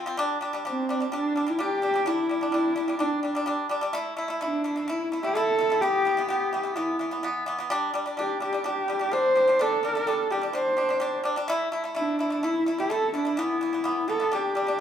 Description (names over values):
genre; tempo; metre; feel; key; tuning
mongolian traditional, Mongolian folk; 127 BPM; 4/4; straight; G zhi mode; A4 = 440 Hz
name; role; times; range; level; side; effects
pipa; arpeggios; 0.0-14.8 s; E3 to E4; -28 LUFS; equal; none
dark horsehead fiddle; melody; 0.7-14.8 s; C4 to C5; -24 LUFS; equal; none
room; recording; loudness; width
wet large studio reverb, RT60 0.9 s; band playing live in one room; -24 LUFS; side -9 dB against mid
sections
0.2-14.8 A section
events
none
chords
0.2 G5; 3.9 A5; 5.8 E5; 7.7 G5; 11.5 A5; 13.4 E5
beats
| 0.18 0.65 1.12 1.59 | 2.06 2.53 3.00 3.47 | 3.94 4.42 4.89 5.36 | 5.83 6.30 6.77 7.24 | 7.71 8.19 8.66 9.13 | 9.60 10.07 10.54 11.02 | 11.49 11.96 12.44 12.91 | 13.38 13.86 14.33 14.80